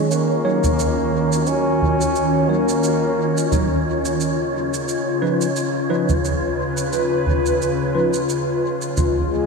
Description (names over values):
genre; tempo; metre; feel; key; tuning
ambient dub; 88 BPM; 4/4; swing 56% on 16ths; unclear; A4 = 440 Hz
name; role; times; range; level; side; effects
mellow trombone; melody; 0.0-3.9, 9.3-9.5 s; Ab3 to Db4; -24 LUFS; equal; vintage 12-bit sampler grit, dub echo
airy breathy pad; sustained chords; 0.0-9.5 s; Db3 to Eb5; -21 LUFS; equal; chorus
wind-like tuned noise texture; texture; 0.0-9.5 s; Db4 to Db5; -24 LUFS; left 2 dB; built-in reverb
shaker and toms; drums; 0.1-9.1 s; none; -25 LUFS; right 1 dB; none
tine electric piano; stabs; 0.4-8.1 s; F3 to Db5; -28 LUFS; right 2 dB; medium stereo tremolo, dub echo
room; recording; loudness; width
moderate huge ambient reverb, RT60 7.3 s; none; -17 LUFS; side -4 dB against mid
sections
0.0-9.5 A section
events
none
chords
0.0 Ebm7; 4.2 Db9